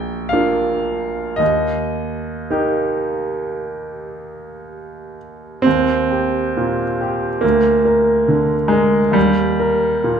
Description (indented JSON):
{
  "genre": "classical, romantic nocturne for solo piano",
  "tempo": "53-72 BPM",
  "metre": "4/4",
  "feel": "rubato",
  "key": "Eb major",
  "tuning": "A4 = 439 Hz",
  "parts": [
    { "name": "clear grand piano", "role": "solo", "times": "0.0-10.2 s", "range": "Bb1 to G5", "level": "-16 LUFS", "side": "right 1 dB", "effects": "none" }
  ],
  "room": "wet recital hall reverb, RT60 1.6 s",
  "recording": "none",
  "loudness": "-15 LUFS",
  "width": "side -7 dB against mid",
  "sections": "0.0-5.7 A section; 5.7-10.2 B section",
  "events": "none",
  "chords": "0.0 Bb; 1.4 Eb; 7.4 Bb/D; 9.2 Eb"
}